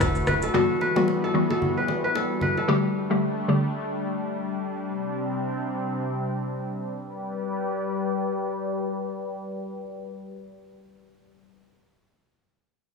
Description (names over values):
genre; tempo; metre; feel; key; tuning
afrobeats; 112 BPM; 4/4; swing 58% on 16ths; G major; A4 = 435 Hz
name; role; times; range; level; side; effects
warm analog pad; sustained chords; 0.0-11.5 s; C3 to D5; -28 LUFS; left 2 dB; chorus, low-pass filter
kora; riff; 0.0-3.9 s; A4 to B4; -28 LUFS; equal; low-pass filter, tape echo
sub bass with octave; bass; 0.0-0.5 s; D1 to E1; -31 LUFS; right 1 dB; none
afro-pop drum kit; drums; 0.0-0.5 s; kick drum, rim click, shaker; -28 LUFS; equal; vintage 12-bit sampler grit
bongos and congas; percussion; 0.0-2.7 s; none; -31 LUFS; left 2 dB; none
hollow square pluck; accompaniment; 0.5-3.7 s; D3 to G4; -24 LUFS; left 1 dB; chorus, low-pass filter
room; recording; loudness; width
light reverb, digital ambience; studio ambience; -24 LUFS; side -4 dB against mid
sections
0.0-7.0 A section; 7.0-11.3 B section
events
filter sweep 0.0-7.0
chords
0.0 Dadd9; 0.5 Emadd9; 2.7 Gsus2; 4.8 Csus2; 7.0 G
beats
0.00 | 0.54 1.07 1.61 2.15 | 2.68 3.22 3.75 4.29 | 4.83 5.36 5.90 6.43 | 6.97 7.50 8.04 8.57 | 9.11 9.65 10.18 10.72